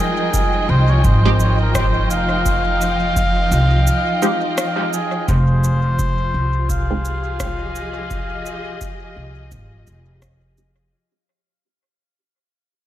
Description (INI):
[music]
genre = ambient dub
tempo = 85 BPM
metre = 4/4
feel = swing 59% on 16ths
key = F minor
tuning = A4 = 440 Hz
[part]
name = trumpet with cup mute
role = melody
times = 0.0-10.2 s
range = Ab4 to F5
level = -22 LUFS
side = left 1 dB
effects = dub echo
[part]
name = dark studio string section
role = sustained chords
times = 0.0-10.9 s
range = F3 to G5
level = -24 LUFS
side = right 1 dB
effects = none
[part]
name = handpan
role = arpeggios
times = 0.0-1.0 s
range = Ab3 to Bb4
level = -34 LUFS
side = left 5 dB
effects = none
[part]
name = electronic cabasa and rim click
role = drums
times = 0.3-10.7 s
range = none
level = -28 LUFS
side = equal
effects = overdrive, small room ambience, dub echo
[part]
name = electronic kick drum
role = drums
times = 0.3-10.4 s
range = none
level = -23 LUFS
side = equal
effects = small room ambience
[part]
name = upright bass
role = bass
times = 0.7-10.9 s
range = F1 to C2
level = -18 LUFS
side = equal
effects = none
[part]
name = filtered dub chord stab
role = stabs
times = 1.3-10.7 s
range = Ab3 to G4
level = -26 LUFS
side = right 2 dB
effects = lush chorus, dub echo
[sound]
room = light reverb, studio reverb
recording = none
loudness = -15 LUFS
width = side -13 dB against mid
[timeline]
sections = 0.0-5.3 A section; 5.3-10.9 B section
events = break 3.9-5.3; fade-out 5.3-10.9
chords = 0.0 Fm7